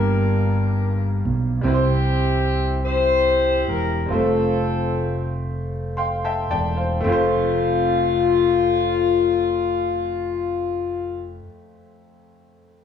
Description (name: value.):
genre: slow gospel.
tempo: 35-51 BPM (dotted quarters).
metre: 6/8.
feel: straight.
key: F major.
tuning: A4 = 441 Hz.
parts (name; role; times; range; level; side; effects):
warm horn section; melody; 0.0-11.3 s; C4 to C5; -20 LUFS; left 4 dB; none.
bright concert grand piano; accompaniment; 0.0-12.8 s; F2 to C6; -25 LUFS; right 1 dB; none.
fingered electric bass; bass; 0.0-11.4 s; E1 to C2; -24 LUFS; equal; none.
room: wet large studio reverb, RT60 1.2 s.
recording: band playing live in one room, small room ambience.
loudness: -18 LUFS.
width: side -8 dB against mid.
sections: 0.0-7.1 A section; 7.1-10.5 B section.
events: slowing down 1.6-7.1; grand piano fill 5.5-7.1.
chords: 0.0 Gm; 1.6 C; 4.1 F.